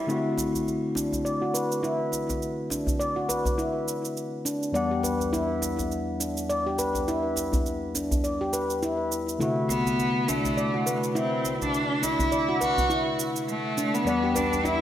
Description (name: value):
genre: organic downtempo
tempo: 103 BPM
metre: 4/4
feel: swing 57% on 16ths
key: unclear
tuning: A4 = 435 Hz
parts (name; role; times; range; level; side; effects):
- barky tine electric piano; accompaniment; 0.1-14.8 s; E2 to F#5; -30 LUFS; left 2 dB; digital delay
- handpan; arpeggios; 0.1-14.7 s; D4 to D5; -28 LUFS; equal; low-pass filter, digital delay
- shaker; drums; 0.1-14.8 s; none; -34 LUFS; right 5 dB; none
- djembe; percussion; 0.4-14.8 s; none; -32 LUFS; equal; none
- clear cello; melody; 9.7-14.8 s; A3 to F#4; -26 LUFS; equal; digital delay
room: wet lush hall reverb, RT60 1.9 s, digital ambience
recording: bright 1980s-style digital production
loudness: -24 LUFS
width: side -11 dB against mid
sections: 0.1-14.8 A section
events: none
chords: 0.1 D7; 4.7 Em7; 9.4 D7; 14.1 Em7